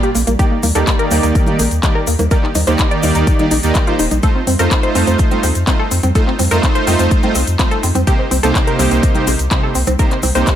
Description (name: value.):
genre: progressive house.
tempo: 125 BPM.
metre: 4/4.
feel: straight.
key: unclear.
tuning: A4 = 440 Hz.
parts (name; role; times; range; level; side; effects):
tight sequenced synth; arpeggios; 0.0-10.5 s; Bb3 to D5; -20 LUFS; left 1 dB; chorus, sidechain pumping, ping-pong delay.
pop drum kit; drums; 0.0-10.6 s; handclaps, hi-hat; -21 LUFS; left 1 dB; none.
bongos, congas and cowbell; percussion; 0.1-10.4 s; none; -26 LUFS; right 4 dB; sidechain pumping on perc.
saturated sub bass; bass; 0.2-10.4 s; Eb1 to F2; -17 LUFS; equal; sidechain pumping.
egg shaker; percussion; 0.2-10.6 s; none; -28 LUFS; left 4 dB; none.
soft supersaw; stabs; 0.4-10.6 s; C3 to D5; -18 LUFS; right 2 dB; sidechain pumping, ping-pong delay.
electronic kick drum; drums; 0.4-10.6 s; none; -15 LUFS; equal; none.
room: little or no reverb.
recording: none.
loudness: -12 LUFS.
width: side -10 dB against mid.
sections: 0.0-10.6 A section.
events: none.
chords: 0.4 Ebmaj7; 4.2 F7; 8.1 Cm7.